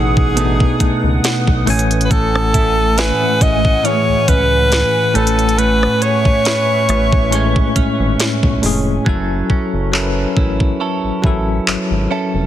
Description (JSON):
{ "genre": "contemporary R&B", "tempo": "69 BPM", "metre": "4/4", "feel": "swing 54% on 16ths", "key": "F# dorian", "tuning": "A4 = 440 Hz", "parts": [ { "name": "clear alto saxophone", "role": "melody", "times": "0.0-7.8 s", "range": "G#4 to D#5", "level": "-17 LUFS", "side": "equal", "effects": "ping-pong delay" }, { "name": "bell-like tine electric piano", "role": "accompaniment", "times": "0.0-12.5 s", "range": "A2 to G#5", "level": "-19 LUFS", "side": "left 2 dB", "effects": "fast stereo tremolo" }, { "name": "granular cloud pad", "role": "sustained chords", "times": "0.0-9.0 s", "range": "A3 to D#6", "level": "-24 LUFS", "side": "equal", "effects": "built-in reverb" }, { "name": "direct-recorded clean electric guitar", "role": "arpeggios", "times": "0.0-12.5 s", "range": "B2 to B4", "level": "-24 LUFS", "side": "right 8 dB", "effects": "phaser, ping-pong delay" }, { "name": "round analog bass", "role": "bass", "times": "0.0-12.5 s", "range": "E#1 to C#2", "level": "-19 LUFS", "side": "equal", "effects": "none" }, { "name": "trap drum kit", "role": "drums", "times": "0.2-11.9 s", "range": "handclaps, hi-hat, kick drum, rim click, snare drum", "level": "-17 LUFS", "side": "equal", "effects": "none" }, { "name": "small celesta", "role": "texture", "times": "1.2-7.2 s", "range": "C#5 to F#5", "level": "-32 LUFS", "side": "right 1 dB", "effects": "none" } ], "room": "light reverb", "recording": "heavily compressed radio sound, multiband compression", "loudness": "-12 LUFS", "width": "side -11 dB against mid", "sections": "0.0-9.1 A section; 9.1-12.5 B section", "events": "none", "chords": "0.0 B7; 1.7 F#m9/A; 5.2 Amaj9; 9.1 F#m7", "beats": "0.37 1.24 | 2.11 2.98 3.85 4.72 | 5.59 6.46 7.33 8.19 | 9.06 9.93 10.80 11.67" }